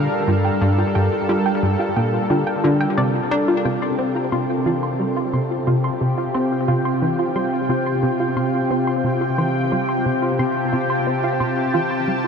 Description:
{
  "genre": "ambient, sequencer-driven space music",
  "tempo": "89 BPM",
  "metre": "4/4",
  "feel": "straight",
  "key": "unclear",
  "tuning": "A4 = 440 Hz",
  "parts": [
    { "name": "lush unison pad", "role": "sustained chords", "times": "0.0-12.3 s", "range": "C3 to A5", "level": "-21 LUFS", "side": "left 1 dB", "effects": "chorus, shimmer reverb" },
    { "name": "warbly dusty pluck", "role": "arpeggios", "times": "0.0-12.3 s", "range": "F4 to C6", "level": "-25 LUFS", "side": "moving between left 2 dB and right 5 dB", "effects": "chorus, auto-pan, ping-pong delay, shimmer reverb" },
    { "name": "plucky analog bass", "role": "riff", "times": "0.0-12.2 s", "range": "G2 to D4", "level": "-22 LUFS", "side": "equal", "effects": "lush chorus, ping-pong delay, shimmer reverb" },
    { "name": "bubbling stepped-filter texture", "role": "texture", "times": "3.8-12.3 s", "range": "G5", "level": "-29 LUFS", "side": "right 1 dB", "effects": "chorus, built-in reverb, shimmer reverb" }
  ],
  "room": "wet huge ambient reverb, RT60 9.3 s",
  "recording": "dreamy mix soaked in reverb",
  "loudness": "-18 LUFS",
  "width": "side -6 dB against mid",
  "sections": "0.0-3.6 A section; 3.6-12.3 B section",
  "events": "filter sweep on analog synth bass 3.6-12.3",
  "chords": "0.0 Gm7; 3.6 Csus4"
}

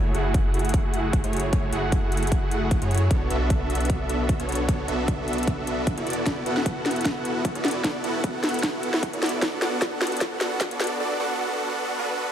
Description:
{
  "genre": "future bass",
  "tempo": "152 BPM",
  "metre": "4/4",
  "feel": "swing 54% on 16ths, half-time",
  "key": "F# minor",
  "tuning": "A4 = 440 Hz",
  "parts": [
    { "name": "supersaw chords", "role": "riff", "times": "0.0-12.3 s", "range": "A3 to F#5", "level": "-26 LUFS", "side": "right 1 dB", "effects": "sidechain pumping, low-pass filter" },
    { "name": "saturated sub bass", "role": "bass", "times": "0.0-11.0 s", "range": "D1 to F#2", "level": "-29 LUFS", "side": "equal", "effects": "sidechain pumping" },
    { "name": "trap drum kit", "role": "drums", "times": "0.1-11.0 s", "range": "hi-hat, snare drum", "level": "-28 LUFS", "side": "left 1 dB", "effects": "studio reverb" },
    { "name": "electronic kick drum", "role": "drums", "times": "0.3-10.7 s", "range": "none", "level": "-26 LUFS", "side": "equal", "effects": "overdrive, studio reverb" }
  ],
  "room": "light reverb",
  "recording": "dark, warm production, high-pass filter",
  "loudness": "-22 LUFS",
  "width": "side -10 dB against mid",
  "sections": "0.0-12.3 A section",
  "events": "build-up 0.0-12.3; filter sweep on supersaw synth 0.0-12.3; filter sweep 0.0-12.3; drum fill 6.3-11.0",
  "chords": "0.0 F#m9; 3.1 Bm9; 6.1 E9sus4; 9.4 D6"
}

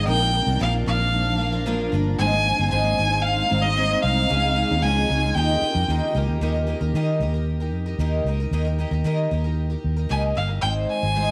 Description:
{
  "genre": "acoustic pop",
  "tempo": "114 BPM",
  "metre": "4/4",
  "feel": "straight",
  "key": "unclear",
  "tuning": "A4 = 441 Hz",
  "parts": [
    { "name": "clear violin", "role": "melody", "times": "0.0-6.1, 10.1-11.3 s", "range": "Eb5 to Ab5", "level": "-25 LUFS", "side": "equal", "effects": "none" },
    { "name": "picked twelve-string acoustic guitar", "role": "accompaniment", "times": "0.0-11.3 s", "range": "Ab2 to C5", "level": "-30 LUFS", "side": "equal", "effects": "none" },
    { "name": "granular cloud pad", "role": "sustained chords", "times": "0.0-6.4 s", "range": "F3 to Eb4", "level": "-32 LUFS", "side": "equal", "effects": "built-in reverb" },
    { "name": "vintage muted fingered electric bass", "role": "bass", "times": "0.0-11.3 s", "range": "G1 to Eb3", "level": "-25 LUFS", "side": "equal", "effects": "none" }
  ],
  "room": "moderate echo chamber reverb, RT60 1.6 s, small room ambience",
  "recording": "none",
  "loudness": "-22 LUFS",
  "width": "mono",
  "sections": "0.0-6.4 A section; 6.4-10.6 B section",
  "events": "none",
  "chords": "0.1 Bb; 2.2 Ab; 4.3 Dbadd9; 5.3 Eb; 10.6 Ab"
}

